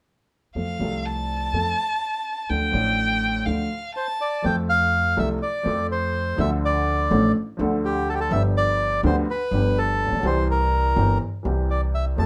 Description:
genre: tango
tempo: 124 BPM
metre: 4/4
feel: rubato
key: F major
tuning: A4 = 440 Hz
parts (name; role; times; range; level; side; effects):
- warm violin; second line; 0.6-4.4 s; F5 to A5; -28 LUFS; equal; none
- warm baby grand piano; accompaniment; 0.6-12.3 s; G1 to A4; -28 LUFS; equal; none
- upright bass; bass; 0.6-12.3 s; G1 to F2; -28 LUFS; equal; none
- bandoneon; melody; 4.0-12.3 s; G4 to A5; -25 LUFS; equal; none
room: moderate studio reverb, RT60 0.5 s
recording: none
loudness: -23 LUFS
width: mono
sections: 0.6-4.4 A section; 4.4-12.3 B section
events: none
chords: 0.6 F; 2.5 Dm; 4.4 F; 6.4 Dm; 8.3 G7; 10.2 C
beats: | 0.56 1.04 1.53 2.01 | 2.50 2.98 3.46 3.95 | 4.44 4.93 5.41 5.90 | 6.38 6.86 7.35 7.83 | 8.31 8.79 9.28 9.76 | 10.24 10.73 11.21 11.70 | 12.18

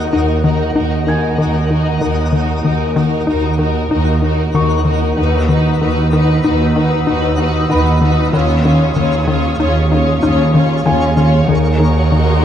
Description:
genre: cinematic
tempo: 95 BPM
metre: 5/4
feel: straight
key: Eb minor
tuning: A4 = 440 Hz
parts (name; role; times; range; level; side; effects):
- rich studio violin section; melody; 0.0-12.4 s; Bb4 to Db5; -22 LUFS; left 4 dB; none
- rich studio violin section; second line; 0.0-12.4 s; F4 to Gb4; -25 LUFS; left 1 dB; none
- warm studio viola section; accompaniment; 0.0-12.4 s; Db4 to Eb4; -22 LUFS; right 1 dB; none
- twinkling granular texture; sustained chords; 0.0-12.4 s; Eb4 to Gb5; -24 LUFS; equal; built-in reverb
- rich studio double bass section; bass; 0.0-12.4 s; Eb2; -18 LUFS; right 2 dB; none
- warm symphonic cello section; bass; 0.0-12.4 s; Eb2; -18 LUFS; right 2 dB; none
- felt-muted upright piano; texture; 0.0-12.4 s; Ab5 to Bb6; -27 LUFS; left 1 dB; none
- plucky analog bass; riff; 0.1-12.3 s; Eb3 to Eb4; -18 LUFS; left 4 dB; none
- rich studio violin section; texture; 5.2-12.4 s; Bb5 to Fb6; -28 LUFS; left 4 dB; none
room: moderate scoring stage reverb, RT60 1.9 s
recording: dark, warm production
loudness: -12 LUFS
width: side -10 dB against mid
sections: 0.0-12.4 A section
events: none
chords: 0.0 Ebm; 5.2 B/D#; 8.3 Db/Eb; 11.5 Ebm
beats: 0.13 0.76 1.39 | 2.02 2.65 3.29 3.92 4.55 | 5.18 5.81 6.44 7.07 7.71 | 8.34 8.97 9.60 10.23 10.86 | 11.49 12.13

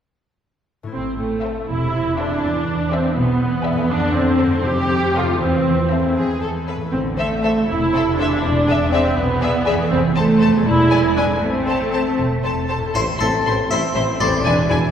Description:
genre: cinematic, playful, whimsical film cue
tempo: 80 BPM (dotted quarters)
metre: 6/8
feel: straight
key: A minor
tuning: A4 = 441 Hz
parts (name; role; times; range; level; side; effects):
- concert harp; arpeggios; 0.8-14.9 s; E2 to D5; -28 LUFS; left 2 dB; none
- warm studio viola section; accompaniment; 0.9-14.8 s; A3 to G4; -19 LUFS; right 1 dB; none
- clear studio double bass section; bass; 0.9-14.8 s; E1 to F2; -25 LUFS; right 1 dB; none
- clear studio violin section; melody; 1.4-14.8 s; C5 to C6; -27 LUFS; left 3 dB; none
- warm studio violin section; second line; 1.4-14.8 s; E4 to D5; -26 LUFS; left 2 dB; none
- rich studio cello section; bass; 1.7-14.8 s; E2 to A3; -25 LUFS; right 2 dB; none
- harpsichord; melody; 13.0-14.9 s; A4 to E5; -22 LUFS; left 3 dB; none
- warm tuba; bass; 13.0-14.8 s; E1 to A1; -26 LUFS; equal; none
- mellow French horn section; sustained chords; 13.2-14.8 s; G#3 to D4; -28 LUFS; left 2 dB; none
room: wet concert hall reverb, RT60 2.0 s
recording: recorded in a church or concert hall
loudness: -16 LUFS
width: side -8 dB against mid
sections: 0.9-12.9 A section; 12.9-14.9 A section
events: none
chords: 0.9 Am; 2.4 E7; 3.9 F; 4.7 F7; 5.4 Am/E; 6.2 E; 6.9 Am; 8.4 E7; 9.9 F; 10.7 E7; 11.4 Am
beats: | 0.94 1.69 | 2.43 3.17 | 3.91 4.65 | 5.41 6.17 | 6.93 7.69 | 8.43 9.17 | 9.91 10.65 | 11.41 12.18 | 12.95 13.70 | 14.44

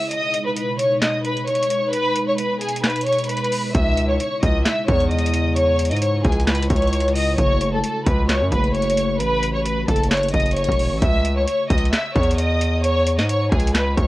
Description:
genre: hip hop, trap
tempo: 132 BPM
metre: 4/4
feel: half-time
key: C# minor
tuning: A4 = 439 Hz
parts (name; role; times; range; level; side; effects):
- rich studio violin section; melody; 0.0-14.1 s; G#4 to E6; -21 LUFS; equal; low-pass filter, cassette tape, tape echo
- glassy FM pad; sustained chords; 0.0-11.0 s; B2 to F#4; -28 LUFS; equal; ensemble chorus, built-in reverb, cassette tape
- booming analog drum machine; drums; 0.1-14.1 s; handclaps, hi-hat, kick drum, snare drum; -22 LUFS; equal; cassette tape
- distorted 808-style bass; bass; 3.7-14.1 s; E1 to G#2; -20 LUFS; equal; distortion
room: little or no reverb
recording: home recording on cassette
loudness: -17 LUFS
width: side -17 dB against mid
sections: 0.0-11.0 A section; 11.0-14.1 B section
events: break 0.0-3.7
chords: 0.1 G#m; 3.7 C#m; 7.4 F#m; 11.0 C#m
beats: | 0.11 0.56 1.02 1.47 | 1.93 2.38 2.84 3.29 | 3.75 4.20 4.66 5.11 | 5.57 6.02 6.47 6.93 | 7.38 7.84 8.29 8.75 | 9.20 9.66 10.11 10.56 | 11.02 11.47 11.93 12.38 | 12.84 13.29 13.75

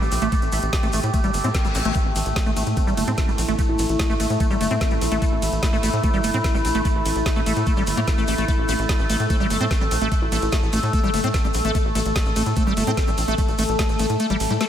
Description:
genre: psychedelic trance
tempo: 147 BPM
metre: 4/4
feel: straight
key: unclear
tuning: A4 = 438 Hz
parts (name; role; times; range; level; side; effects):
- overtone-sweeping drone; sustained chords; 0.0-14.7 s; A3 to A4; -25 LUFS; equal; chorus, built-in reverb, vintage 12-bit sampler grit, sidechain pumping
- liquid acid bass; riff; 0.0-14.7 s; G3 to C4; -26 LUFS; moving between left 5 dB and right 5 dB; chorus, auto-pan, sidechain pumping, ping-pong delay
- tight sequencer bass; bass; 0.0-14.6 s; G1 to A2; -25 LUFS; equal; none
- tube shaker; percussion; 0.0-14.7 s; none; -35 LUFS; left 2 dB; none
- garage drum kit; drums; 0.1-14.7 s; hi-hat, ride cymbal, snare drum; -30 LUFS; right 1 dB; none
- electronic kick drum; drums; 0.3-13.9 s; none; -22 LUFS; equal; none
- reverse cymbal and zap; sound effects; 1.3-2.0 s; none; -33 LUFS; left 4 dB; none
- vowel-sweep wobble bass; second line; 2.8-6.1, 9.3-12.7 s; C4 to E4; -33 LUFS; equal; chorus, sidechain pumping, high-pass filter, ping-pong delay
room: moderate lush hall reverb, RT60 1.9 s, digital ambience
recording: dreamy mix soaked in reverb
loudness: -18 LUFS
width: side -10 dB against mid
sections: 0.0-14.7 A section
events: reverse cymbal 1.3-2.0; kick drops out 14.2-14.7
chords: 0.0 A5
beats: | 0.32 0.73 1.14 1.54 | 1.95 2.36 2.77 3.18 | 3.59 3.99 4.40 4.81 | 5.22 5.63 6.04 6.44 | 6.85 7.26 7.67 8.08 | 8.48 8.89 9.30 9.71 | 10.12 10.53 10.93 11.34 | 11.75 12.16 12.57 12.97 | 13.38 13.79 14.20 14.61

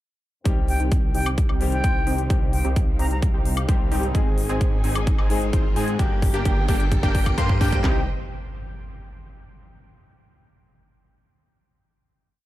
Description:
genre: EDM, festival progressive house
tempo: 130 BPM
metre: 4/4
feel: straight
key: C minor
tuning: A4 = 440 Hz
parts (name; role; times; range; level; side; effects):
- clear grand piano; accompaniment; 0.4-8.0 s; G2 to Ab4; -30 LUFS; left 3 dB; sidechain pumping, dub echo
- warm studio string section; sustained chords; 0.5-8.1 s; C3 to Ab5; -36 LUFS; right 1 dB; sidechain pumping, low-pass filter
- wide unison lead; arpeggios; 0.5-8.0 s; G5 to C6; -34 LUFS; equal; analog chorus, vintage 12-bit sampler grit, sidechain pumping, dub echo
- supersaw stab; riff; 0.5-8.0 s; Bb3 to C5; -30 LUFS; right 1 dB; sidechain pumping, low-pass filter, dub echo
- wide detuned saw bass; bass; 0.5-8.1 s; G1 to Ab2; -25 LUFS; equal; chorus, sidechain pumping
- big-room dance drum kit; drums; 0.5-7.9 s; handclaps, kick drum; -21 LUFS; equal; overdrive
- electronic hi-hat and woodblock; drums; 0.5-7.8 s; none; -34 LUFS; left 3 dB; overdrive
- riser and impact; sound effects; 3.3-9.7 s; none; -37 LUFS; equal; none
- jazz flute; melody; 0.7-3.2 s; G5 to Bb5; -32 LUFS; left 1 dB; dub echo
room: little or no reverb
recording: dark, warm production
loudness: -19 LUFS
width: side -15 dB against mid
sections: 0.5-7.8 build; 7.8-9.7 final chord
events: build-up 0.5-7.8; filter sweep on supersaw synth 0.5-7.8; filter sweep on analog synth lead 0.5-7.8; filter sweep on string section 0.5-7.8; drum fill 4.1-7.8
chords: 0.5 Cm; 4.1 Ab; 6.0 Gm; 7.8 Cm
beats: | 0.46 0.92 1.38 1.84 | 2.30 2.76 3.23 3.69 | 4.15 4.61 5.07 5.53 | 5.99 6.46 6.92 7.38 | 7.84 8.30 8.76 9.22

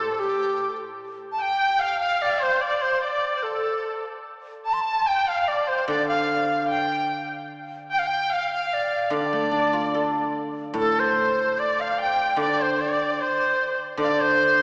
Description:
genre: chinese traditional, Chinese chamber ensemble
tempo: 74 BPM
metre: 2/4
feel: straight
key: D yu mode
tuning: A4 = 442 Hz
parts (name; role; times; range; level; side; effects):
- bright reedy large dizi; melody; 0.0-14.6 s; G4 to C6; -26 LUFS; equal; none
- rich erhu; second line; 0.0-14.6 s; G4 to A5; -30 LUFS; equal; none
- guzheng; accompaniment; 0.0-1.8, 5.9-14.6 s; A2 to A4; -31 LUFS; equal; none
room: wet cathedral reverb, RT60 4.0 s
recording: recorded in a church or concert hall, small speaker sound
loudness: -24 LUFS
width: mono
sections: 0.0-10.8 A section; 10.8-14.6 B section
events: none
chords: none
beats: 0.16 | 0.97 1.78 | 2.59 3.42 | 4.24 5.07 | 5.89 6.70 | 7.50 8.30 | 9.12 9.94 | 10.76 11.57 | 12.38 13.19 | 13.98

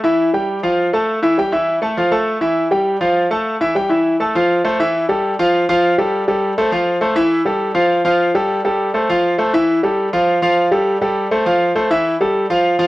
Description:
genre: latin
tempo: 203 BPM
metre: 4/4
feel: straight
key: unclear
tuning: A4 = 440 Hz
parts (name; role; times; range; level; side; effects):
- bright concert grand piano; solo; 0.0-12.9 s; E3 to A5; -14 LUFS; equal; cassette tape
room: moderate spring reverb, RT60 1.4 s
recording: home recording on cassette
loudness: -14 LUFS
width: side -18 dB against mid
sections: 0.0-4.4 A section; 4.4-12.9 B section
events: none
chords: 0.2 Em; 0.8 Fmaj7; 1.4 A5; 2.0 Fmaj7; 2.6 Em; 3.2 Fmaj7; 3.8 A5; 4.4 Fmaj7; 4.9 A5; 5.5 Fadd9; 6.1 Gsus24; 6.7 Fmaj7; 7.3 A5; 7.9 Fadd9; 8.5 Gsus24; 9.1 Fmaj7; 9.7 A5; 10.3 Fadd9; 10.9 Gsus24; 11.5 Fmaj7; 12.0 A5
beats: 0.20 0.49 | 0.79 1.09 1.39 1.68 | 1.98 2.27 2.57 2.87 | 3.17 3.46 3.76 4.05 | 4.35 4.65 4.94 5.24 | 5.54 5.83 6.13 6.43 | 6.72 7.02 7.31 7.61 | 7.91 8.20 8.50 8.79 | 9.09 9.39 9.68 9.98 | 10.27 10.57 10.87 11.16 | 11.46 11.75 12.05 12.34 | 12.64

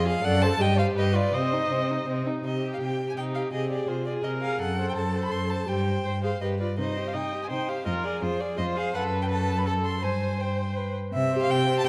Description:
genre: quick classical-period movement for string quartet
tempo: 166 BPM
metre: 3/4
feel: straight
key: C minor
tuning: A4 = 440 Hz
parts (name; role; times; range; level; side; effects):
- warm violin; melody; 0.0-11.9 s; C5 to C6; -34 LUFS; equal; none
- rich violin; second line; 0.0-11.9 s; C4 to Eb5; -34 LUFS; equal; none
- warm viola; accompaniment; 0.0-11.9 s; Eb4 to Eb5; -33 LUFS; equal; none
- warm cello; bass; 0.0-11.9 s; F2 to C3; -30 LUFS; equal; none
room: moderate scoring stage reverb, RT60 1.8 s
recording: none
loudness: -27 LUFS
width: mono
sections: 0.0-2.5 A section; 2.5-11.1 A section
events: none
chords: 0.2 D7/F#; 0.6 Cm/G; 1.0 G7; 1.3 Cm; 3.5 Bb13/C; 4.6 F#dim; 5.7 C5/G; 6.4 G; 6.8 Cm; 7.9 Fmadd11; 8.9 F#madd11; 10.0 C5/G; 11.1 C5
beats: | 0.24 0.60 0.96 | 1.33 1.71 2.08 | 2.45 2.81 3.18 | 3.54 3.89 4.25 | 4.61 4.97 5.33 | 5.69 6.06 6.42 | 6.79 7.15 7.51 | 7.87 8.23 8.59 | 8.95 9.31 9.66 | 10.03 10.40 10.77 | 11.14 11.50 11.86

